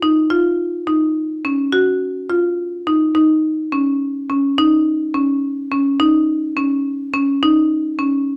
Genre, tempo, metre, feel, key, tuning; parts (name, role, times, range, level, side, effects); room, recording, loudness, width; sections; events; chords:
progressive instrumental, progressive; 211 BPM (eighths); 5/8; straight; A4 = 440 Hz
marimba with hard mallets; solo; 0.0-8.4 s; Db4 to Gb4; -17 LUFS; equal
moderate studio reverb, RT60 0.7 s; -17 LUFS; mono
0.0-3.1 A section; 3.1-8.4 B section